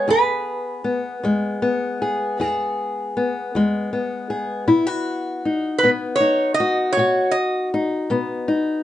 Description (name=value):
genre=acoustic country blues, solo or duo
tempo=52 BPM (dotted quarters)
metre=12/8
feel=straight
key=E major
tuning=A4 = 439 Hz
part: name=lap resonator guitar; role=melody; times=0.0-7.7 s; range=B4 to D#5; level=-19 LUFS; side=right 2 dB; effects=none
part: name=fingerpicked old ladder-braced acoustic guitar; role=accompaniment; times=0.0-8.8 s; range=E2 to G#4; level=-20 LUFS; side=left 2 dB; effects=none
room=moderate small room reverb, RT60 0.5 s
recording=nothing above 10.4 kHz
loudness=-19 LUFS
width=side -12 dB against mid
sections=0.0-8.8 A section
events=none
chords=0.0 E; 4.7 B